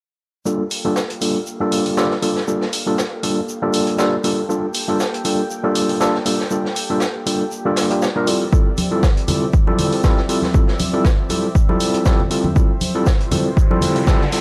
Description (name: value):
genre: deep house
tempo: 119 BPM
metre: 4/4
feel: swing 55% on 16ths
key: G dorian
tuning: A4 = 440 Hz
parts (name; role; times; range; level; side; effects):
- warm analog pad; sustained chords; 0.5-14.4 s; F3 to G5; -32 LUFS; equal; lush chorus, sidechain pumping
- overdriven tine electric piano; stabs; 0.5-14.4 s; G3 to Bb4; -22 LUFS; equal; medium tremolo, vintage 12-bit sampler grit, sidechain pumping, low-pass filter, tape echo
- raw garage drum kit; drums; 0.5-14.4 s; hi-hat, shaker, snare drum; -29 LUFS; equal; high-pass filter on hats, high-pass filter on snare, high-pass filter on perc, high-pass filter on room
- electronic hi-hat; drums; 0.7-14.4 s; none; -28 LUFS; equal; none
- electronic kick drum; drums; 8.5-14.2 s; none; -17 LUFS; equal; none
- congas; percussion; 8.8-14.2 s; none; -26 LUFS; equal; none
- riser; sound effects; 13.2-14.4 s; none; -30 LUFS; equal; none
room: light reverb, small room ambience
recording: none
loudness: -18 LUFS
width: mono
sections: 0.5-14.4 A section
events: riser 13.2-14.4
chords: 0.5 Gm9; 8.3 Dm11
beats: | 0.46 0.96 1.47 1.97 | 2.48 2.98 3.48 3.99 | 4.49 5.00 5.50 6.01 | 6.51 7.01 7.52 8.02 | 8.53 9.03 9.54 10.04 | 10.54 11.05 11.55 12.06 | 12.56 13.06 13.57 14.07